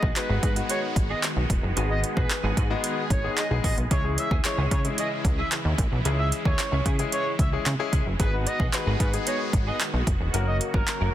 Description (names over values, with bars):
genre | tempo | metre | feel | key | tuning
dance-pop | 112 BPM | 4/4 | straight | unclear | A4 = 440 Hz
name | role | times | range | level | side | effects
expressive portamento lead | melody | 0.0-11.1 s | A#4 to E5 | -32 LUFS | right 1 dB | chorus, sidechain pumping, ping-pong delay
filtered supersaw swell | sustained chords | 0.0-11.1 s | C#3 to G#4 | -33 LUFS | right 1 dB | sidechain pumping
direct-recorded clean electric guitar | riff | 0.0-11.1 s | B3 to A#4 | -37 LUFS | right 4 dB | ensemble chorus
plucky analog bass | bass | 0.0-11.1 s | E1 to C#3 | -26 LUFS | equal | sidechain pumping
deep house drum kit | drums | 0.0-11.0 s | handclaps, hi-hat, kick drum | -26 LUFS | equal | overdrive
warm grand piano | accompaniment | 0.2-10.9 s | G#3 to B4 | -32 LUFS | left 7 dB | sidechain pumping
room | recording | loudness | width
little or no reverb | dense, heavily limited modern master | -22 LUFS | side -12 dB against mid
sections
0.0-11.1 A section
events
none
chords
0.0 G#m7; 3.9 C#m; 8.2 G#m7; 10.3 F#